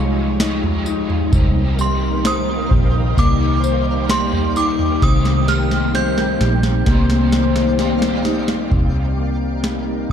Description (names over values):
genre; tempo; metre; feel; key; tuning
dream pop; 65 BPM; 4/4; straight; unclear; A4 = 444 Hz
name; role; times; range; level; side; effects
crunchy overdriven guitar; accompaniment; 0.0-9.2 s; C3 to D5; -26 LUFS; right 2 dB; harmonic tremolo, ensemble chorus
soft string machine; sustained chords; 0.0-10.1 s; Eb3 to Db5; -24 LUFS; right 1 dB; ensemble chorus
mellow electric guitar; arpeggios; 0.0-10.1 s; C3 to D5; -22 LUFS; left 5 dB; wide subtle chorus, digital delay
vintage muted fingered electric bass; bass; 0.0-10.1 s; Bb1 to C2; -20 LUFS; equal; none
booming analog drum machine; drums; 0.4-10.1 s; kick drum, snare drum, tambourine, toms; -20 LUFS; equal; none
twinkling granular texture; texture; 1.7-9.7 s; Bb4 to G5; -31 LUFS; right 1 dB; built-in reverb, digital delay
synth chime; melody; 1.8-7.3 s; C6 to G6; -24 LUFS; right 3 dB; ensemble chorus, digital delay
room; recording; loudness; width
moderate concert hall reverb, RT60 2.3 s; dark, warm production; -15 LUFS; side -8 dB against mid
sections
0.0-8.7 A section; 8.7-10.1 B section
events
drum fill 5.0-8.7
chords
0.0 Dbadd9; 1.3 Ebmaj7